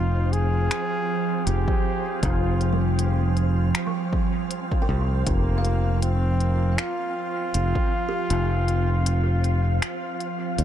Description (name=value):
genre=ambient dub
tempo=79 BPM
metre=4/4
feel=swing 55% on 16ths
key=unclear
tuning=A4 = 440 Hz
part: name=clear trombone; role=melody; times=0.0-10.6 s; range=Bb3 to Ab4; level=-29 LUFS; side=equal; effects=dub echo
part: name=soft additive organ-like pad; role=sustained chords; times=0.0-10.6 s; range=F3 to G5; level=-30 LUFS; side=right 4 dB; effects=ensemble chorus, built-in reverb
part: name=buzzing kalimba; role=arpeggios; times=0.0-10.6 s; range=F3 to G5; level=-36 LUFS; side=right 3 dB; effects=dub echo
part: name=fingered electric bass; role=bass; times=0.0-10.6 s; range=F1 to Eb2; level=-21 LUFS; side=equal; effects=none
part: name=wind-like tuned noise texture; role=texture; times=0.0-10.6 s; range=C4 to F5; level=-34 LUFS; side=right 1 dB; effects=built-in reverb
part: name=organic electronic drum kit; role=drums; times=0.3-10.6 s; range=finger snaps, hi-hat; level=-30 LUFS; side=left 1 dB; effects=none
part: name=electronic kick drum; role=drums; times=1.7-7.9 s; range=none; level=-25 LUFS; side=equal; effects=none
room=light reverb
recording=none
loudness=-21 LUFS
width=side -10 dB against mid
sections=0.0-10.6 A section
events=kick drops out 8.3-10.6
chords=0.0 F5